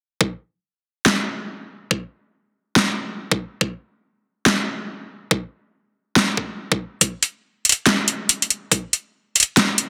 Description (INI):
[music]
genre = deep dubstep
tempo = 141 BPM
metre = 4/4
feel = swing 61% on 16ths, half-time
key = none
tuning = none
[part]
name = electronic kick drum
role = drums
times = 0.2-8.8 s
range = none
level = -22 LUFS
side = equal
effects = high-pass filter on kick
[part]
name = dubstep drum kit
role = drums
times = 1.1-9.9 s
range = hi-hat, snare drum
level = -19 LUFS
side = equal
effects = none
[sound]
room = moderate echo chamber reverb, RT60 1.7 s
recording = dense, heavily limited modern master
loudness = -21 LUFS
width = mono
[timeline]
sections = 0.2-9.9 A section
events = none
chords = none